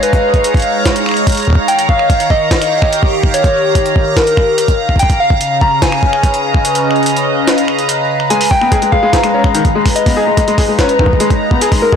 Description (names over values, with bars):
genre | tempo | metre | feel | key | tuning
IDM | 145 BPM | 4/4 | straight | Ab melodic minor | A4 = 440 Hz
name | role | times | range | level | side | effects
soft struck synth lead | melody | 0.0-12.0 s | Bb4 to Bb5 | -15 LUFS | left 1 dB | chorus, digital delay
phased analog pad | sustained chords | 0.0-12.0 s | Db3 to Bb5 | -16 LUFS | equal | phaser, chorus
jungle sampler-style drum kit | drums | 0.0-12.0 s | finger snaps, hi-hat, snare drum | -19 LUFS | right 1 dB | overdrive
bubbling stepped-filter texture | texture | 0.0-12.0 s | Bb5 | -21 LUFS | right 2 dB | chorus, built-in reverb
electronic kick drum | drums | 0.1-12.0 s | none | -13 LUFS | equal | overdrive
felt-muted upright piano | arpeggios | 8.3-12.0 s | Eb3 to Ab4 | -16 LUFS | left 4 dB | dub echo
room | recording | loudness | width
light reverb | blown-out, overdriven recording, overdrive | -10 LUFS | side -7 dB against mid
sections
0.0-12.0 A section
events
kick drops out 6.6-8.3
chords
0.0 Abm6; 1.7 Eb7; 5.0 Db7; 8.3 Abm6